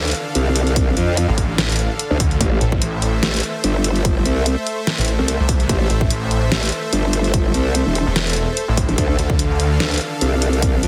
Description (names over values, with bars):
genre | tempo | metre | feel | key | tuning
heavy wobble dubstep | 146 BPM | 4/4 | swing 54% on 16ths, half-time | A minor | A4 = 439 Hz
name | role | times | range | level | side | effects
supersaw pad | sustained chords | 0.0-10.9 s | D3 to F5 | -27 LUFS | equal | sidechain pumping
growl bass | bass | 0.0-10.9 s | E1 to F2 | -20 LUFS | equal | chorus, overdrive
dubstep drum kit | drums | 0.1-10.9 s | hi-hat, snare drum | -24 LUFS | equal | none
electronic kick drum | drums | 0.8-10.7 s | none | -22 LUFS | equal | none
snarling distorted saw bass | bass | 1.3-9.8 s | E1 to D2 | -22 LUFS | equal | distortion, overdrive
room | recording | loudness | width
little or no reverb | heavily compressed radio sound, multiband compression | -18 LUFS | mono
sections
0.0-10.9 A section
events
none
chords
0.0 Dm; 2.4 Am; 9.0 Dm